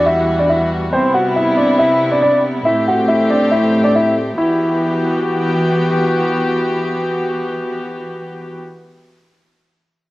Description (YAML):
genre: hip hop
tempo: 139 BPM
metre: 4/4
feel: half-time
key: E minor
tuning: A4 = 440 Hz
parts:
  - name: warm concert grand piano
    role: melody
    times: 0.0-5.6 s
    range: C4 to F#5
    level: -15 LUFS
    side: equal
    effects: cassette tape, tape echo
  - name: warm chamber string section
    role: sustained chords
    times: 0.0-8.6 s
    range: E2 to G4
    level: -16 LUFS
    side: equal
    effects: none
room: light reverb, small room ambience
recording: home recording on cassette, lossy compression artefacts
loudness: -13 LUFS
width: side -18 dB against mid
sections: 0.0-4.4 A section; 4.4-7.8 B section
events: none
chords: 0.0 Emadd9; 0.9 Cmaj7; 2.7 Am7; 4.4 Emadd9